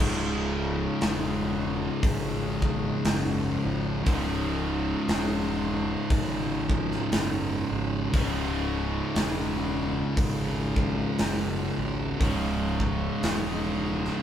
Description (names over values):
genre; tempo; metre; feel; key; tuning
stoner and doom metal; 59 BPM; 4/4; swing 58% on 8ths; C# minor; A4 = 440 Hz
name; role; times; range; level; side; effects
percussive tonewheel organ; sustained chords; 0.0-14.2 s; C#3 to D#4; -40 LUFS; left 2 dB; none
overdriven electric guitar; riff; 0.0-14.2 s; C#2 to C#3; -33 LUFS; left 2 dB; none
thick fuzz guitar; riff; 0.0-14.2 s; C#2 to C#3; -33 LUFS; left 7 dB; distortion
thick fuzz guitar; riff; 0.0-14.2 s; C#2 to C#3; -30 LUFS; right 4 dB; distortion
fuzz picked electric bass; bass; 0.0-14.1 s; C#1 to G#1; -33 LUFS; equal; overdrive
big rock drum kit; drums; 1.0-14.1 s; hi-hat, kick drum, snare drum; -29 LUFS; equal; none
room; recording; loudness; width
moderate studio reverb, RT60 0.6 s; band playing live in one room; -25 LUFS; side -10 dB against mid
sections
0.0-14.2 A section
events
none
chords
0.0 C#m